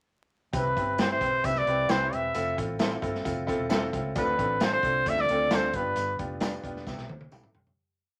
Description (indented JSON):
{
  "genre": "uptempo 1960s-style soul",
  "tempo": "133 BPM",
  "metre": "4/4",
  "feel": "straight",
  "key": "C major",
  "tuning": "A4 = 441 Hz",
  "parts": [
    { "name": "bright upright piano", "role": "accompaniment", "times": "0.5-8.0 s", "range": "G2 to A5", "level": "-34 LUFS", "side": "equal", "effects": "none" },
    { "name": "vintage muted fingered electric bass", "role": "bass", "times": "0.5-7.7 s", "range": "E1 to D2", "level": "-39 LUFS", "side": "equal", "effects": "none" },
    { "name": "crunchy breakbeat drum kit", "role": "drums", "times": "0.5-7.8 s", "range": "hi-hat, kick drum, snare drum, toms", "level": "-34 LUFS", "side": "equal", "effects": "none" },
    { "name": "tambourine", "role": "percussion", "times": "0.5-7.4 s", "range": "none", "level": "-51 LUFS", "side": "equal", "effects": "none" },
    { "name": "clear trumpet", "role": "melody", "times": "0.6-6.2 s", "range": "B4 to E5", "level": "-28 LUFS", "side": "equal", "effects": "none" },
    { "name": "electric guitar through a small old amp", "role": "stabs", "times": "1.0-7.4 s", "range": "D4 to C5", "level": "-37 LUFS", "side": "equal", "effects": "none" }
  ],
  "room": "moderate club reverb, RT60 0.6 s",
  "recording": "vinyl crackle",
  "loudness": "-27 LUFS",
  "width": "mono",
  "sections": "0.5-7.8 A section",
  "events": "upright piano fill 3.3-4.2; fade-out 6.0-7.8; drum fill 6.9-7.8",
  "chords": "0.5 Cmaj7; 2.3 Fmaj7; 4.2 Dm7; 5.7 G7; 6.9 Cmaj7",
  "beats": "| 0.53 0.99 1.44 1.89 | 2.35 2.80 3.25 3.70 | 4.16 4.61 5.06 5.51 | 5.96 6.42 6.87 7.32"
}